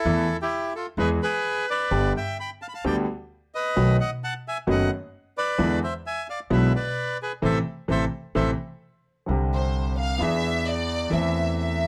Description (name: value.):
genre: tango.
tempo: 130 BPM.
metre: 4/4.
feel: rubato.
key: A minor.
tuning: A4 = 444 Hz.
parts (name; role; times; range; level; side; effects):
bandoneon; melody; 0.0-8.5 s; E4 to B5; -29 LUFS; equal; none.
bright concert grand piano; accompaniment; 0.1-11.9 s; F#1 to A4; -27 LUFS; equal; none.
upright bass; bass; 0.1-11.9 s; F#1 to E2; -29 LUFS; equal; none.
dark studio violin section; second line; 9.5-11.9 s; C5 to F5; -30 LUFS; equal; none.
room: light reverb.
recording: none.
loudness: -25 LUFS.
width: mono.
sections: 0.0-9.3 A section; 9.3-11.9 B section.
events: band accent 7.4-9.3; violin section solo 9.3-11.9.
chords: 0.1 Esus4; 1.0 E; 1.9 G; 3.8 B7; 5.6 E7; 7.4 Am; 9.3 Csus2; 10.2 E7; 11.1 Am/E.